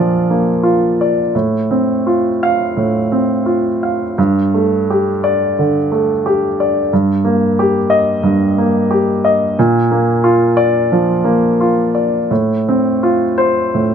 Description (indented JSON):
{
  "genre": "neoclassical minimalist piano",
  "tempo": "82-92 BPM",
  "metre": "4/4",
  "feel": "rubato",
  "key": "unclear",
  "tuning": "A4 = 440 Hz",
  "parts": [
    { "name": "warm grand piano", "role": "solo", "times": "0.0-13.9 s", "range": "G2 to F5", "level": "-12 LUFS", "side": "equal", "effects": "none" }
  ],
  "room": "light reverb",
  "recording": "none",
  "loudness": "-12 LUFS",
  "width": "side -8 dB against mid",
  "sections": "0.0-13.9 A section",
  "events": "none",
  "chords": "0.0 Bb; 1.3 F/A; 4.2 Gsus2; 6.9 Eb/G; 9.6 Bb; 12.3 F/A"
}